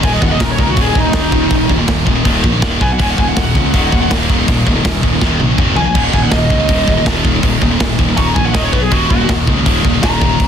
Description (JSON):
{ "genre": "heavy metal", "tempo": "162 BPM", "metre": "4/4", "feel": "straight", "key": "Eb minor", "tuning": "A4 = 442 Hz", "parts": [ { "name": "high-gain lead guitar", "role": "melody", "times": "0.0-10.5 s", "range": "Eb4 to Db6", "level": "-19 LUFS", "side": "equal", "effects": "distortion" }, { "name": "heavy high-gain guitar", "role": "riff", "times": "0.0-10.5 s", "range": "Eb2 to B3", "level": "-17 LUFS", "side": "left 1 dB", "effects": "distortion" }, { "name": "heavy high-gain guitar", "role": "riff", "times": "0.0-10.5 s", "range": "Eb2 to Eb3", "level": "-19 LUFS", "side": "equal", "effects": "distortion" }, { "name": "fuzz fingered electric bass", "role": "bass", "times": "0.0-10.5 s", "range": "Eb1 to Db2", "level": "-18 LUFS", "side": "equal", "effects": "overdrive" }, { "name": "tight metal drum kit", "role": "drums", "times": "0.0-10.5 s", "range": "crash cymbal, hi-hat, kick drum, snare drum, toms", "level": "-16 LUFS", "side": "equal", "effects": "none" } ], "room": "small room ambience", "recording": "dense, heavily limited modern master", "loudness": "-11 LUFS", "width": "side -8 dB against mid", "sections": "0.0-10.5 A section", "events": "lead electric guitar solo 0.0-10.5; drum fill 5.2-6.0", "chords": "0.0 Eb5; 2.8 B5; 3.0 Ebm; 5.8 Bb5; 6.0 Eb5; 8.7 B5; 8.9 Eb5" }